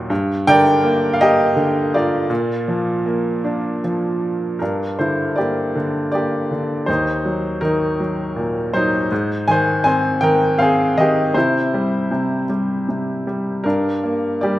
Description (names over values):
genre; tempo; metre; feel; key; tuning
classical, lyrical solo piano; 80 BPM; 3/4; rubato; unclear; A4 = 440 Hz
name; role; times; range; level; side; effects
bright upright piano; solo; 0.0-14.6 s; Eb2 to Ab5; -16 LUFS; equal; none
room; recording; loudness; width
moderate scoring stage reverb, RT60 1.6 s; none; -16 LUFS; side -15 dB against mid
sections
0.0-4.6 A section; 4.6-14.6 B section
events
none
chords
0.1 Gm; 2.3 Bb; 4.6 Gm; 6.9 Ebm; 9.1 Ab; 11.4 C; 13.7 Gm